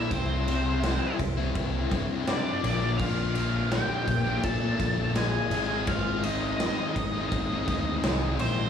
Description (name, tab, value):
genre	classic rock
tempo	83 BPM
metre	4/4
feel	straight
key	unclear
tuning	A4 = 441 Hz
part	octave-fuzz lead guitar	melody	0.0-8.7 s	C5 to A5	-33 LUFS	right 1 dB	wah, distortion, tape echo
part	dark smooth lead guitar	second line	0.0-8.7 s	C4 to A4	-36 LUFS	right 5 dB	overdrive
part	mellow tonewheel organ	sustained chords	0.0-8.7 s	Bb3 to Eb5	-40 LUFS	right 2 dB	none
part	sludgy distorted guitar	riff	0.0-8.7 s	Ab2 to E4	-31 LUFS	left 7 dB	overdrive
part	picked electric bass	bass	0.1-8.7 s	Ab1 to Bb2	-31 LUFS	equal	none
part	big rock drum kit	drums	0.1-8.6 s	crash cymbal, kick drum, ride cymbal, snare drum	-30 LUFS	equal	none
room	light reverb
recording	small room ambience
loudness	-25 LUFS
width	side -8 dB against mid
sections	0.0-8.7 A section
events	none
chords	0.1 C; 2.6 Bb; 5.5 Ab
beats	| 0.11 0.84 1.56 2.28 | 3.00 3.72 4.44 5.16 | 5.88 6.60 7.32 8.04